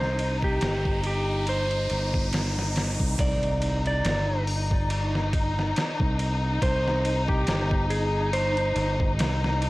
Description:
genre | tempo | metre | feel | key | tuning
trip hop | 70 BPM | 4/4 | swing 56% on 16ths | C minor | A4 = 440 Hz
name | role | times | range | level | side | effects
clean lap steel guitar | melody | 0.0-9.1 s | G4 to D5 | -30 LUFS | right 1 dB | tape echo
rich studio string section | sustained chords | 0.0-9.7 s | Eb4 | -30 LUFS | left 2 dB | none
overdriven fingered electric bass | bass | 0.0-9.7 s | G1 to C2 | -27 LUFS | equal | none
trip hop sampler-style drum kit | drums | 0.0-9.7 s | hi-hat, kick drum, ride cymbal, snare drum | -29 LUFS | equal | studio reverb
riser and impact | sound effects | 0.0-6.6 s | none | -36 LUFS | equal | none
room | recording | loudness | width
little or no reverb | dry, gritty hardware recording, vinyl crackle | -23 LUFS | side -19 dB against mid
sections
0.0-3.2 A section; 3.2-9.7 B section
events
riser 0.0-3.2; impact 3.2-6.6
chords
0.0 Cm/G

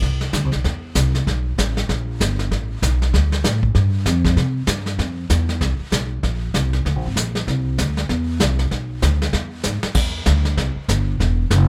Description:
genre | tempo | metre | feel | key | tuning
jazz piano trio | 193 BPM | 4/4 | swing 61% on 8ths | C major | A4 = 438 Hz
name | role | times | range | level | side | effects
upright bass | bass | 0.0-11.7 s | E1 to C3 | -21 LUFS | equal | none
vintage brush drum kit | drums | 0.0-11.7 s | brushed snare drum, crash cymbal, hi-hat, kick drum, snare drum | -25 LUFS | equal | none
room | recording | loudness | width
light reverb | none | -20 LUFS | mono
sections
0.0-10.0 A section; 10.0-11.7 B section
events
drum fill 9.6-10.0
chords
none

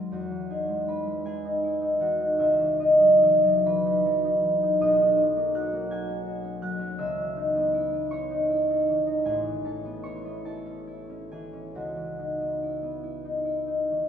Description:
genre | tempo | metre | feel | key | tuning
classical, solo harp piece | 44-56 BPM (dotted quarters) | 6/8 | rubato | unclear | A4 = 436 Hz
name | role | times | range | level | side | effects
concert harp | solo | 0.0-14.1 s | A1 to G#6 | -23 LUFS | equal | none
room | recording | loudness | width
wet church reverb, RT60 3.6 s | heard from further back in the room | -22 LUFS | side -8 dB against mid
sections
0.0-14.1 A section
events
none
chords
0.1 Emaj7; 2.4 C#m11; 4.8 Bmaj9; 7.0 C#m9; 9.3 Aadd9; 11.8 C#m11

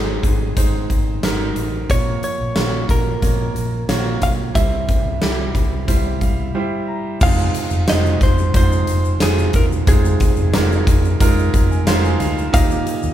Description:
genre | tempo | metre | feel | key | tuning
piano-driven pop | 90 BPM | 4/4 | straight | F minor | A4 = 441 Hz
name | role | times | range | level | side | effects
direct-recorded clean electric guitar | melody | 0.0-13.1 s | Ab4 to F5 | -24 LUFS | right 1 dB | none
clear concert grand piano | accompaniment | 0.0-13.1 s | Ab2 to Bb5 | -23 LUFS | right 3 dB | none
vintage muted fingered electric bass | bass | 0.0-13.1 s | E1 to Eb2 | -21 LUFS | equal | none
huge arena drum kit | drums | 0.2-13.0 s | crash cymbal, hi-hat, kick drum, snare drum | -18 LUFS | equal | none
tube shaker | percussion | 7.2-13.1 s | none | -37 LUFS | left 5 dB | none
room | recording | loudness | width
light reverb | band playing live in one room | -15 LUFS | side -11 dB against mid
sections
0.0-7.2 A section; 7.2-13.1 B section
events
grand piano fill 5.9-7.2, 11.2-12.5; break 6.6-7.2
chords
0.0 Ab; 1.9 Bbm; 4.6 C; 7.2 Fm7; 12.5 Eb

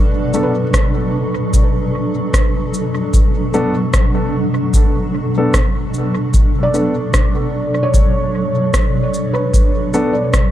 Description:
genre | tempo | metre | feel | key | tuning
ambient dub | 75 BPM | 4/4 | swing 60% on 16ths | B minor | A4 = 440 Hz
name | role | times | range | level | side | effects
granular cloud pad | sustained chords | 0.0-10.5 s | B2 to C#6 | -18 LUFS | equal | built-in reverb
felt-muted upright piano | arpeggios | 0.0-10.5 s | B4 to D5 | -23 LUFS | right 1 dB | tape echo
dark upright piano | stabs | 0.3-10.1 s | B3 to A4 | -21 LUFS | left 1 dB | dub echo
electronic cabasa and rim click | drums | 0.3-10.5 s | none | -23 LUFS | equal | dub echo
electronic kick drum | drums | 0.7-10.5 s | none | -15 LUFS | equal | none
room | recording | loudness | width
digital ambience | none | -13 LUFS | side -12 dB against mid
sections
0.0-10.5 A section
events
none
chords
0.0 Bm7

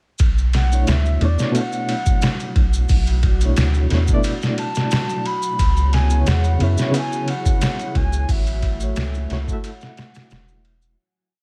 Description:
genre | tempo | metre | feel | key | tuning
trip hop | 89 BPM | 4/4 | swing 53% on 16ths | B dorian | A4 = 439 Hz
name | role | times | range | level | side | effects
round analog bass | bass | 0.2-11.0 s | E1 to F#2 | -20 LUFS | equal | none
trip hop sampler-style drum kit | drums | 0.2-10.8 s | hi-hat, kick drum, ride cymbal, snare drum | -23 LUFS | equal | none
maracas | percussion | 0.2-11.0 s | none | -38 LUFS | equal | none
wind-like tuned noise texture | texture | 1.0-11.0 s | F#3 to F#4 | -36 LUFS | equal | none
baroque flute | melody | 0.5-10.6 s | D5 to B5 | -31 LUFS | equal | vintage 12-bit sampler grit, dub echo
bright reed electric piano | accompaniment | 0.7-11.0 s | B2 to E5 | -28 LUFS | equal | fast tremolo
dark analog pad | sustained chords | 5.6-11.0 s | A3 to C#5 | -34 LUFS | equal | chorus
room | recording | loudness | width
digital ambience | vinyl crackle | -19 LUFS | mono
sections
0.2-11.0 groove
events
fade-out 7.4-11.0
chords
0.2 Bm11; 5.6 C#m7; 8.3 A6

